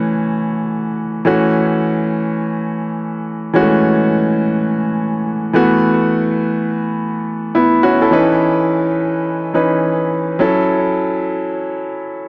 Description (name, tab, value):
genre	R&B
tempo	free time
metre	none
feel	none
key	F# dorian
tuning	A4 = 440 Hz
part	bright grand piano	solo	0.0-12.3 s	E3 to B4	-16 LUFS	equal	tape echo
room	moderate echo chamber reverb, RT60 1.5 s, studio reverb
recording	dark, warm production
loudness	-16 LUFS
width	mono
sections	0.0-1.3 A section; 1.3-12.3 B section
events	none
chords	0.0 F#m7; 5.5 B7sus4; 8.1 C#m9; 10.4 F#m7